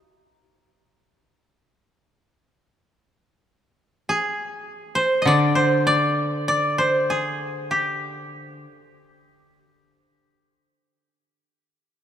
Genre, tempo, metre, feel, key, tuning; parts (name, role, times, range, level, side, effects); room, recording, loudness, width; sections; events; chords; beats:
japanese traditional, Japanese chamber music; 45-52 BPM; 4/4; rubato; A4 = 440 Hz
koto; melody; 0.0-11.5 s; G4 to Eb5; -21 LUFS; equal
koto; accompaniment; 5.3-8.6 s; D3; -24 LUFS; equal
moderate church reverb, RT60 3.1 s; dark, warm production; -19 LUFS; side -9 dB against mid
0.0-12.0 A section
0.49 1.68 | 2.87 4.07 5.27 6.49 | 7.71 8.95 10.22